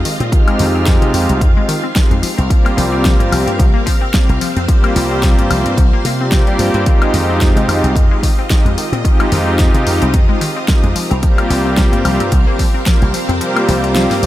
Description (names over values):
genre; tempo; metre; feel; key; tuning
nu-disco, nu disco; 110 BPM; 4/4; swing 56% on 16ths; F minor; A4 = 438 Hz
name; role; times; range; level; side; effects
string machine, full ensemble; sustained chords; 0.0-14.3 s; C4 to F5; -24 LUFS; equal; ensemble chorus, sidechain pumping
slap bass with an envelope filter; bass; 0.0-14.3 s; C2 to C3; -17 LUFS; equal; none
analog pluck; arpeggios; 0.1-14.3 s; Eb3 to C4; -23 LUFS; left 4 dB; chorus, sidechain pumping, tape echo
pop drum kit; drums; 0.1-14.3 s; hi-hat, snare drum, woodblock; -21 LUFS; left 1 dB; none
warm analog pad; accompaniment; 0.3-14.3 s; G3 to G4; -18 LUFS; equal; chorus, sidechain pumping, tape echo
electronic kick drum; drums; 0.3-13.0 s; none; -12 LUFS; equal; none
room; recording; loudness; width
digital ambience; none; -11 LUFS; side -14 dB against mid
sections
0.0-14.3 A section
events
kick drops out 13.4-14.3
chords
0.0 Fm7; 2.2 C7sus4; 6.9 Fm7; 11.0 C7sus4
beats
| 0.32 0.87 1.41 1.96 | 2.50 3.05 3.60 4.14 | 4.68 5.23 5.78 6.32 | 6.87 7.41 7.96 8.50 | 9.05 9.60 10.14 10.69 | 11.23 11.78 12.32 12.87 | 13.41 13.96